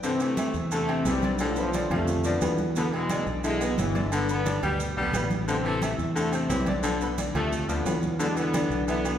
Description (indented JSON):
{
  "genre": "latin, salsa",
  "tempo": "176 BPM",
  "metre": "4/4",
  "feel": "straight",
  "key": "A minor",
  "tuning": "A4 = 438 Hz",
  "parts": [
    { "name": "warm baritone saxophone", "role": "second line", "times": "0.0-9.1 s", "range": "D3 to G3", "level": "-32 LUFS", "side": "left 3 dB", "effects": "none" },
    { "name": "bright upright piano", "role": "accompaniment", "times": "0.0-9.2 s", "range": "B2 to B5", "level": "-30 LUFS", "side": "left 2 dB", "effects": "none" },
    { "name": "agogo bells and timbales", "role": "percussion", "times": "0.0-9.2 s", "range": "none", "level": "-37 LUFS", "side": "right 4 dB", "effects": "none" },
    { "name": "congas", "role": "percussion", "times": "0.0-9.2 s", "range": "none", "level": "-35 LUFS", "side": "equal", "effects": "none" },
    { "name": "maracas", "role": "percussion", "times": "0.0-9.2 s", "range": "none", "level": "-40 LUFS", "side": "right 6 dB", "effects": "none" },
    { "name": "bright trombone section", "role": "melody", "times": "0.1-9.2 s", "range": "A2 to D4", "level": "-30 LUFS", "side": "equal", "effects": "none" },
    { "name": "fingered electric bass", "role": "bass", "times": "0.5-9.2 s", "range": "G1 to F2", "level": "-30 LUFS", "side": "equal", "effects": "none" }
  ],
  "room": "wet recital hall reverb, RT60 1.6 s",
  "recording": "recorded in a church or concert hall",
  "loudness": "-24 LUFS",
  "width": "side -9 dB against mid",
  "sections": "0.0-9.2 A section",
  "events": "none",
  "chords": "0.0 Am; 1.4 Bm7b5; 2.8 E7; 4.1 G; 5.5 Am; 6.8 Bm7b5; 8.2 E7(no3)"
}